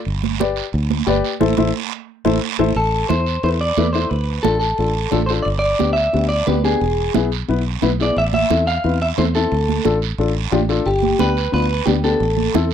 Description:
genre	latin, cumbia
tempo	178 BPM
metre	4/4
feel	straight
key	A minor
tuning	A4 = 441 Hz
part	fingered electric bass	bass	0.1-12.7 s	E1 to E2	-20 LUFS	equal	none
part	congas	percussion	0.1-12.7 s	none	-23 LUFS	right 19 dB	none
part	guiro	percussion	0.1-12.7 s	none	-29 LUFS	right 22 dB	none
part	dark upright piano	accompaniment	0.4-12.7 s	B3 to D5	-20 LUFS	left 6 dB	none
part	clean electric guitar	melody	2.8-12.7 s	G4 to F5	-20 LUFS	equal	spring reverb, slapback echo
room	little or no reverb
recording	dry, close 1970s-style studio recording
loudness	-16 LUFS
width	side -9 dB against mid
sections	0.0-2.8 A section; 2.8-12.7 B section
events	band accent 1.4-2.8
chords	0.1 G; 1.4 Am; 4.1 Dm; 5.5 G; 6.8 E; 8.2 Am; 9.5 Dm; 10.9 G; 12.2 Am

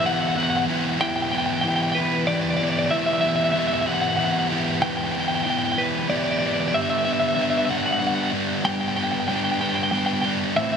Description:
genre	rock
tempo	63 BPM (dotted quarters)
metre	6/8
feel	straight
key	E minor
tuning	A4 = 440 Hz
part	twelve-string electric guitar	melody	0.0-10.8 s	B4 to G5	-23 LUFS	equal	tape echo
part	sludgy distorted guitar	riff	0.0-10.8 s	A2 to G4	-23 LUFS	equal	overdrive
room	light reverb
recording	none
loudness	-20 LUFS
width	side -7 dB against mid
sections	0.0-10.8 A section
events	none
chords	0.0 Em; 6.7 G

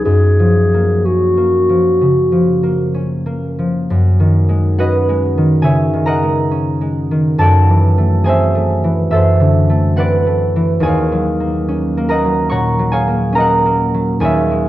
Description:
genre	classical, impressionist duo for clarinet and harp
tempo	60-73 BPM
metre	4/4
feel	rubato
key	F# mixolydian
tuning	A4 = 440 Hz
part	mellow clarinet	melody	0.0-3.0 s	F#4 to G#4	-14 LUFS	left 1 dB	none
part	concert harp	accompaniment	0.0-14.7 s	D#2 to C#6	-12 LUFS	equal	none
room	wet recital hall reverb, RT60 1.7 s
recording	worn, warbling old tape, cassette tape, warbly pitch drift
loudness	-12 LUFS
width	side -14 dB against mid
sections	0.0-3.9 A section; 3.9-14.7 A section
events	none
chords	0.0 F#maj9; 3.9 F#69; 7.4 D9/F#; 10.8 D#m11

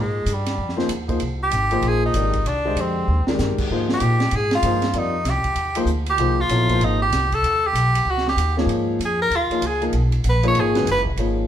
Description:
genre	modal jazz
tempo	192 BPM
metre	4/4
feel	swing 63% on 8ths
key	F dorian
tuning	A4 = 439 Hz
part	bright tenor saxophone	melody	0.0-11.0 s	G3 to C#5	-22 LUFS	right 1 dB	none
part	upright bass	bass	0.0-11.5 s	F#1 to Bb2	-22 LUFS	equal	none
part	compact cocktail drum kit	drums	0.3-11.3 s	crash cymbal, hi-hat, kick drum, ride cymbal, snare drum	-29 LUFS	right 2 dB	none
part	warm grand piano	accompaniment	0.8-11.5 s	D3 to Eb5	-24 LUFS	left 2 dB	none
room	moderate stone room reverb, RT60 1.2 s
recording	band playing live in one room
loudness	-18 LUFS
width	side -10 dB against mid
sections	0.0-8.7 A section; 8.7-11.5 A section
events	tenor saxophone solo 0.0-11.5; drum fill 3.1-3.4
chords	0.0 Fm9; 7.4 Eb7b13; 8.7 G#m69

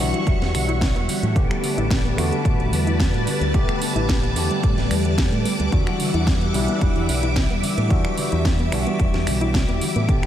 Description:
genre	nu-disco, nu disco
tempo	110 BPM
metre	4/4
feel	straight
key	E minor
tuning	A4 = 437 Hz
part	overdriven tine electric piano	accompaniment	0.0-10.3 s	D3 to G4	-25 LUFS	equal	phaser, sidechain pumping, diffuse ambient delay
part	string machine, full ensemble	sustained chords	0.0-10.3 s	G3 to D6	-26 LUFS	equal	phaser, ensemble chorus, sidechain pumping
part	soft round pluck	arpeggios	0.0-10.3 s	D3 to E4	-30 LUFS	equal	none
part	fingered electric bass with an envelope filter	bass	0.0-10.2 s	E1 to A2	-24 LUFS	equal	none
part	house drum kit	drums	0.0-10.3 s	finger snaps, hi-hat, snare drum	-29 LUFS	right 1 dB	studio reverb
part	electronic kick drum	drums	0.3-10.2 s	none	-21 LUFS	equal	studio reverb
room	moderate huge ambient reverb, RT60 4.6 s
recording	dreamy mix soaked in reverb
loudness	-18 LUFS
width	side -11 dB against mid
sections	0.0-10.3 A section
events	none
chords	0.0 Em9; 1.4 A9sus4; 5.7 Em9

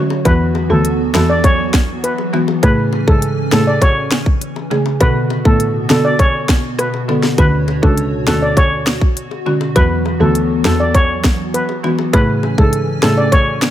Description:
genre	dancehall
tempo	101 BPM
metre	4/4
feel	straight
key	A major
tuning	A4 = 439 Hz
part	buzzing marimba with medium mallets	accompaniment	0.0-13.3 s	C#3 to A4	-19 LUFS	equal	none
part	hollow soft pad	sustained chords	0.0-13.7 s	B2 to G#5	-23 LUFS	equal	ensemble chorus, sidechain pumping
part	bongos	percussion	0.1-13.5 s	none	-28 LUFS	left 9 dB	none
part	steel pan	melody	0.3-13.7 s	A4 to D5	-18 LUFS	equal	digital delay
part	dark cello	bass	0.3-13.7 s	C#2 to B2	-18 LUFS	equal	none
part	island pop drum kit	drums	0.3-13.7 s	finger snaps, hi-hat, kick drum, rim click, snare drum	-14 LUFS	equal	none
room	small room ambience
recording	none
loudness	-12 LUFS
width	side -12 dB against mid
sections	0.0-13.7 A section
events	none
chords	0.3 Esus2; 2.6 Amaj7; 5.0 Bm7; 7.4 Dmaj7; 9.8 Esus2; 12.1 Amaj7

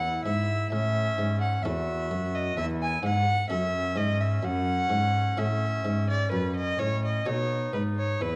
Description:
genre	classical, baroque-style sonata movement with continuo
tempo	64 BPM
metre	4/4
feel	straight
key	unclear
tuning	A4 = 436 Hz
part	warm oboe	melody	0.0-8.4 s	C#4 to F#4	-40 LUFS	equal	none
part	rich violin	second line	0.0-8.4 s	B4 to G#5	-31 LUFS	equal	none
part	buff-stop harpsichord	accompaniment	0.0-8.4 s	E2 to B4	-36 LUFS	equal	none
part	rich cello	bass	0.0-8.4 s	E2 to B2	-31 LUFS	equal	none
room	moderate recital hall reverb, RT60 1.3 s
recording	dark, warm production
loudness	-27 LUFS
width	mono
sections	0.0-8.4 A section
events	none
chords	0.0 E; 0.7 A; 4.4 F#m; 6.3 B7/F#

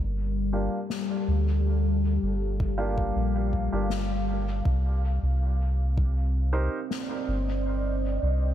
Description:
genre	ambient dub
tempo	80 BPM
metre	4/4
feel	straight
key	G minor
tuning	A4 = 440 Hz
part	deep dark ambient pad	sustained chords	0.0-8.5 s	G3 to F5	-31 LUFS	left 3 dB	chorus, built-in reverb
part	soft dub sub bass	bass	0.0-8.5 s	G1 to D2	-26 LUFS	equal	tube saturation
part	bright upright piano	stabs	0.5-6.8 s	Bb3 to C5	-35 LUFS	right 2 dB	low-pass filter, dub echo
part	snare drum	drums	0.9-7.1 s	none	-38 LUFS	left 5 dB	small room ambience, dub echo
part	electronic kick drum	drums	2.6-6.1 s	none	-28 LUFS	equal	small room ambience
room	light reverb, studio ambience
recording	none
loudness	-24 LUFS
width	side -11 dB against mid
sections	0.0-8.5 A section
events	filter sweep on upright piano 0.0-8.5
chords	0.0 Gm7; 4.7 Cm7

